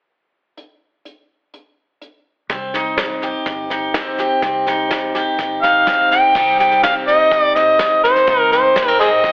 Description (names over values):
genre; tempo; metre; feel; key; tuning
honky-tonk and classic country; 125 BPM; 4/4; straight; C minor; A4 = 444 Hz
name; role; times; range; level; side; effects
soft brush drum kit; drums; 0.6-9.3 s; crash cymbal, hi-hat, kick drum, snare drum; -23 LUFS; equal; none
picked steel-string acoustic guitar; accompaniment; 2.5-9.3 s; G2 to G4; -19 LUFS; equal; none
vintage muted fingered electric bass; bass; 2.5-9.3 s; G1 to C2; -41 LUFS; equal; none
overdriven harmonica; melody; 5.6-9.3 s; Ab4 to G5; -11 LUFS; equal; none
room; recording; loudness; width
moderate large studio reverb, RT60 1.1 s; heavily compressed radio sound, telephone sound; -13 LUFS; side -36 dB against mid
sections
0.6-2.5 A section; 2.5-6.4 B section; 6.4-9.3 C section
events
none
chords
0.6 N.C.; 2.5 Cm